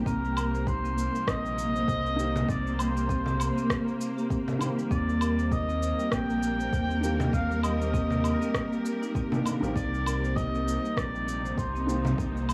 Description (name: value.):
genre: organic downtempo.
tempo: 99 BPM.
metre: 4/4.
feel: swing 57% on 16ths.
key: C minor.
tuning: A4 = 441 Hz.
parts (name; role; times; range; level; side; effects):
felt-muted upright piano; accompaniment; 0.0-12.5 s; D3 to C5; -40 LUFS; equal; sidechain pumping, tape echo.
dark symphonic string section; sustained chords; 0.0-12.5 s; C3 to C5; -35 LUFS; equal; sidechain pumping.
marimba with medium mallets; arpeggios; 0.0-12.5 s; G3 to C5; -35 LUFS; equal; tape echo.
round analog bass; bass; 0.0-12.5 s; Bb1 to Eb2; -34 LUFS; equal; sidechain pumping.
trumpet with cup mute; melody; 0.1-12.1 s; Bb4 to G5; -36 LUFS; equal; tape echo.
electronic cabasa, woodblock and rim click; drums; 0.1-12.5 s; none; -38 LUFS; equal; none.
electronic kick drum; drums; 0.1-12.3 s; none; -35 LUFS; equal; overdrive.
frame drum; percussion; 2.4-12.2 s; none; -35 LUFS; equal; none.
room: light reverb, small room reverb.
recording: small room ambience.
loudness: -28 LUFS.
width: mono.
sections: 0.0-12.5 A section.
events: none.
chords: 0.0 Cm7; 4.9 Ebmaj7; 9.8 Cm7.